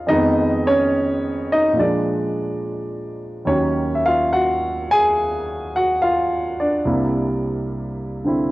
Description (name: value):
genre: solo jazz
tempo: 71 BPM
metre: 4/4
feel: swing 68% on 8ths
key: unclear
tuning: A4 = 440 Hz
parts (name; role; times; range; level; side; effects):
- warm grand piano; solo; 0.0-8.5 s; C2 to Ab5; -18 LUFS; equal; cassette tape
room: light reverb, small room ambience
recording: home recording on cassette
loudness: -18 LUFS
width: side -18 dB against mid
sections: 0.0-3.5 A section; 3.5-8.5 B section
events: none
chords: 0.1 Fm7b5; 1.8 Bb7; 3.5 Ebm9; 6.8 C7